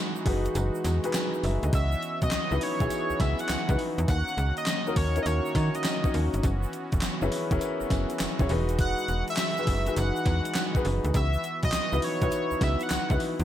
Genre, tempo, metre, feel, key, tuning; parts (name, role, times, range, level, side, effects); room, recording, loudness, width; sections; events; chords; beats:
R&B, new jack swing; 102 BPM; 4/4; swing 66% on 16ths; C# dorian; A4 = 440 Hz
warm concert grand piano; accompaniment; 0.0-13.4 s; C#4 to G#5; -31 LUFS; left 2 dB
brassy analog pad; sustained chords; 0.0-13.4 s; D#3 to F#4; -36 LUFS; right 1 dB; chorus
egg shaker; percussion; 0.2-13.4 s; -47 LUFS; right 11 dB
slap-like FM bass; bass; 0.3-13.4 s; E1 to D#3; -27 LUFS; equal
gated 80s digital drum machine; drums; 0.3-13.4 s; handclaps, hi-hat, kick drum, snare drum, tambourine; -29 LUFS; equal; gated reverb, gated reverb snare, overdrive
octave-doubled lead; melody; 1.7-13.2 s; C#5 to F#5; -31 LUFS; equal; chorus
little or no reverb; -24 LUFS; side -11 dB against mid
0.0-1.7 A section; 1.7-13.4 B section
kick muted 0.6-1.7
0.0 Emaj9; 1.7 C#m11; 4.1 D#m7; 6.4 F#7sus4; 8.5 Emaj9; 11.1 C#m11
0.55 1.14 | 1.73 2.32 2.90 3.49 | 4.08 4.67 5.26 5.85 | 6.43 7.02 7.61 8.20 | 8.79 9.38 9.96 10.55 | 11.14 11.73 12.32 12.90